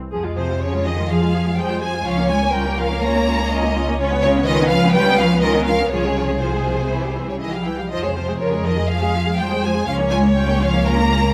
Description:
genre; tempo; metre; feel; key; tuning
quick classical-period movement for string orchestra; 124 BPM; 4/4; rubato; F minor; A4 = 440 Hz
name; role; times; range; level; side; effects
warm studio viola section; accompaniment; 0.1-11.3 s; E3 to Ab4; -27 LUFS; equal; none
warm studio double bass section; bass; 0.1-11.3 s; C2 to F2; -25 LUFS; equal; none
warm studio violin section; melody; 0.4-11.3 s; C5 to Bb5; -26 LUFS; equal; none
warm studio cello section; bass; 0.4-11.3 s; C3 to Bb3; -24 LUFS; equal; none
dark studio violin section; second line; 1.1-11.3 s; Ab4 to Eb5; -26 LUFS; equal; none
room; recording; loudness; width
light reverb; none; -19 LUFS; mono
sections
0.1-11.3 A section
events
none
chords
0.1 Fm; 2.0 Bbm/Db; 4.0 Db7; 5.9 Fm/C; 6.9 C; 7.9 Fm; 9.9 Bbm/Db

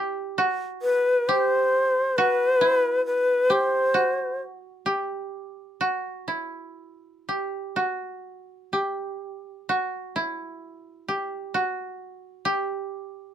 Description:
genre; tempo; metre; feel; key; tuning
japanese traditional, Japanese chamber music; 60-70 BPM; 4/4; rubato; E hirajoshi; A4 = 440 Hz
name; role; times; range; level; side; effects
koto; second line; 0.0-13.3 s; E4 to G4; -27 LUFS; right 2 dB; none
breathy bright long shakuhachi; melody; 0.8-4.4 s; B4 to C5; -20 LUFS; left 1 dB; none
room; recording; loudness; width
light reverb; close, detailed microphones; -22 LUFS; side -10 dB against mid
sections
0.0-13.3 A section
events
none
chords
none

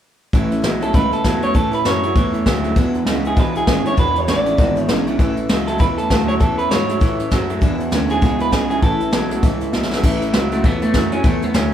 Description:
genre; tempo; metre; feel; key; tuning
rockabilly; 198 BPM; 4/4; swing 59% on 8ths; A major; A4 = 440 Hz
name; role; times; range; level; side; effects
picked steel-string acoustic guitar; accompaniment; 0.3-11.7 s; E2 to E4; -25 LUFS; left 2 dB; none
electric guitar through a small old amp; riff; 0.3-11.7 s; E2 to F#3; -23 LUFS; right 2 dB; none
dark baby grand piano; bass; 0.3-11.7 s; E1 to A2; -23 LUFS; equal; none
jazz brush drum kit; drums; 0.3-11.6 s; crash cymbal, hi-hat, kick drum, snare drum; -18 LUFS; equal; none
electric guitar through a small old amp; melody; 0.8-11.7 s; A3 to D5; -21 LUFS; right 2 dB; none
room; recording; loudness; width
light reverb; band playing live in one room; -15 LUFS; side -10 dB against mid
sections
0.3-10.0 A section; 10.0-11.7 A section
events
drum fill 9.7-10.0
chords
0.3 A; 2.8 E7; 5.2 A; 7.6 E7; 8.8 A

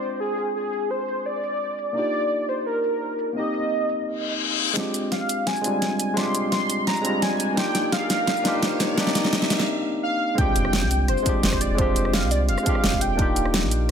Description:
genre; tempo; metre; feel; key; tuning
liquid drum and bass; 171 BPM; 4/4; straight; F dorian; A4 = 440 Hz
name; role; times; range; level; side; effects
warm velvety synth lead; melody; 0.0-13.5 s; Ab4 to C6; -26 LUFS; equal; chorus, dub echo
tine electric piano; accompaniment; 0.0-13.9 s; G3 to G5; -26 LUFS; equal; digital delay
pop drum kit; drums; 0.0-13.8 s; hi-hat, rim click, shaker, snare drum; -25 LUFS; equal; low-pass filter on perc, low-pass filter on snare, low-pass filter on hats
reverse cymbal, riser and impact; sound effects; 4.2-11.8 s; none; -30 LUFS; left 2 dB; none
electronic kick drum; drums; 4.8-13.3 s; none; -26 LUFS; equal; high-pass filter on kick
warm sub bass; bass; 4.9-13.9 s; Eb1 to C2; -24 LUFS; equal; high-pass filter
room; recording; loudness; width
moderate recital hall reverb, RT60 1.5 s; none; -21 LUFS; side -7 dB against mid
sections
0.0-4.8 A section; 4.8-10.4 B section; 10.4-13.9 C section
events
reverse cymbal 4.2-4.8; build-up 4.8-10.4; drum fill 4.8-9.7; riser 4.8-9.7; break 9.7-10.4; drop 10.4-13.9; impact 10.4-11.8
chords
0.0 Fm69; 2.0 Ebmaj9; 3.4 Cm7; 4.8 Fm69; 7.6 Ebmaj9; 9.0 Cm9; 10.4 Fm69; 13.2 Ebmaj9

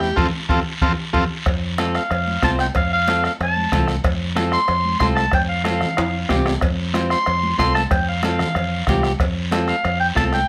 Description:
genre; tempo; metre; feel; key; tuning
latin, cumbia; 186 BPM; 4/4; straight; F major; A4 = 439 Hz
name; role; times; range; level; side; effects
combo organ; melody; 0.0-1.2 s; C4 to A4; -24 LUFS; equal; none
clean electric guitar; accompaniment; 0.0-10.4 s; C4 to C5; -26 LUFS; equal; none
fingered electric bass; bass; 0.0-10.4 s; C2 to F2; -26 LUFS; equal; none
bombo; percussion; 0.0-10.5 s; none; -26 LUFS; equal; none
guiro; percussion; 0.0-10.5 s; none; -34 LUFS; equal; none
congas; percussion; 0.2-10.3 s; none; -31 LUFS; equal; none
cowbell and timbales; percussion; 1.5-10.3 s; none; -32 LUFS; equal; none
warm clarinet; second line; 1.9-10.5 s; F5 to C6; -23 LUFS; equal; none
room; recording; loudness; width
light reverb; none; -20 LUFS; mono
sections
0.0-1.5 A section; 1.5-10.5 B section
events
band accent 0.2-1.5; drum fill 0.5-1.5, 6.0-6.6; clarinet solo 1.5-10.5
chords
0.2 F

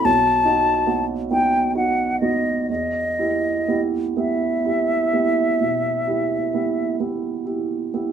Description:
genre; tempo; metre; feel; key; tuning
classical, romantic duo for flute and grand piano; 40-50 BPM (dotted quarters); 12/8; rubato; unclear; A4 = 440 Hz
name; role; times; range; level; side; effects
concert flute; melody; 0.0-7.0 s; D#5 to A5; -20 LUFS; left 2 dB; none
warm grand piano; accompaniment; 0.0-8.1 s; B1 to G4; -22 LUFS; right 4 dB; none
room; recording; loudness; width
moderate studio reverb, RT60 0.7 s; lossy compression artefacts; -18 LUFS; side -8 dB against mid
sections
0.0-8.1 A section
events
none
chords
0.0 B7; 2.7 Em

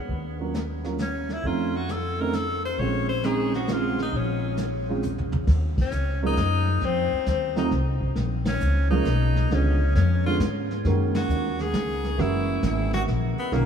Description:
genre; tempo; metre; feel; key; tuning
jazz, small-group swing and bop; 134 BPM; 3/4; swing 68% on 8ths; Bb minor, Eb minor from 5.5 s; A4 = 441 Hz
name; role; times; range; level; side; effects
upright bass; bass; 0.0-13.7 s; Gb1 to Ab2; -25 LUFS; left 1 dB; none
vintage brush drum kit; drums; 0.1-13.7 s; brushed snare drum, crash cymbal, hi-hat, kick drum, ride cymbal, snare drum, toms; -32 LUFS; equal; none
warm upright piano; accompaniment; 0.4-13.7 s; D3 to Gb4; -28 LUFS; right 4 dB; none
edgy tenor saxophone; melody; 1.0-13.7 s; A#3 to Db5; -29 LUFS; left 3 dB; none
room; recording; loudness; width
moderate cathedral reverb, RT60 5.7 s; in a vast, echoing space; -22 LUFS; side -8 dB against mid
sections
0.0-5.5 A section; 5.5-13.7 B section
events
drum fill 5.0-5.5; band accent 5.7, 8.4, 11.1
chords
0.1 Ebm9; 1.4 F7b13; 2.8 Bbm9; 5.5 Ebm7; 6.8 F7(no3); 8.2 Bbm; 9.5 Db7b9; 10.8 Gb69; 12.2 Gb7

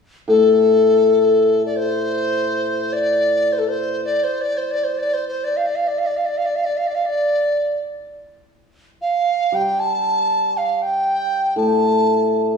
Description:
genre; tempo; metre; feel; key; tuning
chinese traditional, Chinese chamber ensemble; free time; none; none; unclear; A4 = 440 Hz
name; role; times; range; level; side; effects
mellow large dizi; melody; 0.3-12.5 s; A4 to A5; -17 LUFS; equal; none
hammered dulcimer; accompaniment; 0.3-4.1, 9.5-12.6 s; A2 to G3; -20 LUFS; left 2 dB; none
room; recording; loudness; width
moderate scoring stage reverb, RT60 1.6 s; recorded in a church or concert hall, small room ambience; -16 LUFS; side -6 dB against mid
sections
0.0-9.5 A section; 9.5-12.6 B section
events
none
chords
none

